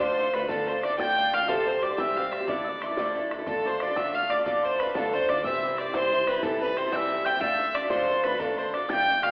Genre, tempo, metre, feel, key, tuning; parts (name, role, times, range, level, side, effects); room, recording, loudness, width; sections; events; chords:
celtic folk, Celtic jig; 122 BPM (dotted quarters); 6/8; straight; D dorian; A4 = 440 Hz
warm fiddle; melody; 0.0-9.3 s; A4 to G5; -29 LUFS; equal
tin whistle; second line; 0.0-9.3 s; A5 to A6; -34 LUFS; equal
picked acoustic archtop guitar; accompaniment; 0.0-9.3 s; C3 to C5; -32 LUFS; equal
upright bass; bass; 0.0-9.3 s; A1 to D2; -49 LUFS; equal
bodhran; percussion; 0.0-9.3 s; -40 LUFS; equal
wet recital hall reverb, RT60 1.4 s; recorded in a church or concert hall, telephone sound; -26 LUFS; mono
0.0-3.5 A section; 3.5-9.3 A section
0.0 Dm; 1.5 C; 2.5 Dmadd9; 3.5 Dm; 5.4 C; 6.4 Am7/C; 7.4 Dm